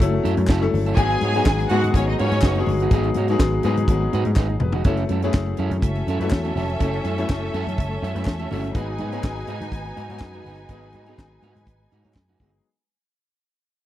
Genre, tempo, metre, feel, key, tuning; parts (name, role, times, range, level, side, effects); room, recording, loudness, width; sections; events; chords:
disco; 123 BPM; 4/4; straight; A4 = 442 Hz
clear grand piano; accompaniment; 0.0-12.7 s; F#3 to B4; -26 LUFS; left 6 dB
dark French horn section; sustained chords; 0.0-12.6 s; F#3 to A4; -31 LUFS; right 2 dB
picked electric bass; bass; 0.0-12.6 s; E#1 to G#2; -24 LUFS; equal
tight funk drum kit; drums; 0.0-12.6 s; hi-hat, kick drum, snare drum, toms; -20 LUFS; equal
congas; percussion; 0.0-12.5 s; -33 LUFS; left 5 dB
electric guitar at the edge of break-up; accompaniment; 0.1-12.6 s; C#4 to C#5; -30 LUFS; right 8 dB; wide subtle chorus
group handclap; percussion; 0.5-12.3 s; -37 LUFS; left 4 dB
clear symphonic violin section; second line; 1.0-2.6, 5.8-12.6 s; C#4 to G#5; -28 LUFS; equal
small room reverb; dry, close 1970s-style studio recording; -19 LUFS; side -13 dB against mid
0.0-4.9 A section; 4.9-12.6 B section
drum fill 4.4-4.9; fade-out 4.9-12.6
0.0 F#m7; 1.0 G#m7; 4.9 F#m7; 8.7 G#m7